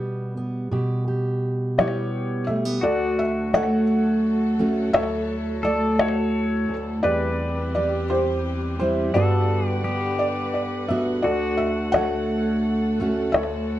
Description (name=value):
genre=acoustic folk-pop ballad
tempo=57 BPM (dotted quarters)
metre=6/8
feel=straight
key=D major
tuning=A4 = 440 Hz
part: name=fingerpicked steel-string acoustic guitar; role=accompaniment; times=0.0-13.8 s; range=D2 to G4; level=-23 LUFS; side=right 1 dB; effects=none
part: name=felt-muted upright piano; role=melody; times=1.8-13.8 s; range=E4 to F#5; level=-24 LUFS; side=left 1 dB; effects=slapback echo
part: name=pedal steel guitar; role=second line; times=2.8-13.8 s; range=F#4 to B4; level=-30 LUFS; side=left 3 dB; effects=none
part: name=warm studio string section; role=sustained chords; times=2.8-13.8 s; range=E2 to F#5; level=-32 LUFS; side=right 1 dB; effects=none
room=light reverb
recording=dark, warm production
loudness=-20 LUFS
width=side -13 dB against mid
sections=0.0-2.8 A section; 2.8-13.8 B section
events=none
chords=0.0 Em/B; 2.8 Dmaj7; 7.0 Cmaj7/E; 9.1 Gmaj7; 11.2 Dmaj7